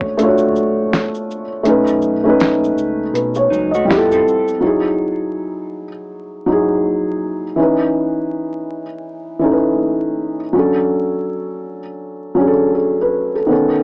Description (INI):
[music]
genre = lo-fi hip hop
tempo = 81 BPM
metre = 4/4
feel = swing 61% on 16ths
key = E major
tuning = A4 = 437 Hz
[part]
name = felt-muted upright piano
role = accompaniment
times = 0.0-13.8 s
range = D#3 to D#5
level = -14 LUFS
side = equal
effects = cassette tape, low-pass filter
[part]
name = warm sub bass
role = bass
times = 0.0-4.6 s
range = E1 to B2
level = -30 LUFS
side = equal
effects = none
[part]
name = dusty soul sampler-style drum kit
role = drums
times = 0.0-4.6 s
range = hi-hat, kick drum, shaker, snare drum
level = -20 LUFS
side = equal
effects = overdrive, vintage 12-bit sampler grit, cassette tape
[part]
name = mellow electric guitar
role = second line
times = 3.5-4.6 s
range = F#3 to A4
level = -22 LUFS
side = equal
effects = harmonic tremolo, low-pass filter, cassette tape, analog delay
[sound]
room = light reverb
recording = home recording on cassette, vinyl crackle, small speaker sound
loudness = -14 LUFS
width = side -33 dB against mid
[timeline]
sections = 0.0-4.6 A section; 4.6-13.8 B section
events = kick muted 1.6-4.6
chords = 0.0 Dmaj7; 1.6 B9; 3.9 Fmaj9; 4.6 Emaj9; 7.6 C#m9/E; 10.5 Dmaj7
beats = 0.17 0.91 | 1.65 2.39 3.13 3.87 | 4.61 5.35 6.09 6.83 | 7.57 8.31 9.06 9.80 | 10.54 11.28 12.02 12.76 | 13.50